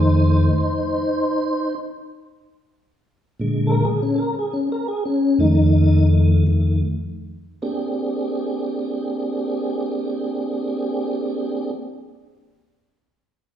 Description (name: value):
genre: blues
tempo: 50-63 BPM (dotted quarters)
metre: 12/8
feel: straight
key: Bb mixolydian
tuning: A4 = 438 Hz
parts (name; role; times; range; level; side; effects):
- mellow tonewheel organ; sustained chords; 0.0-11.7 s; F2 to C5; -18 LUFS; equal; chorus vibrato, slow rotary speaker
room: wet large studio reverb, RT60 1.4 s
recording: band playing live in one room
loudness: -18 LUFS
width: side -10 dB against mid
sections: 0.0-7.6 A section; 7.6-12.4 B section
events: tonewheel organ solo 0.0-7.6; slowing down 2.1-7.6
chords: 0.0 F7; 3.4 Bb7; 5.4 F7; 7.6 Bb13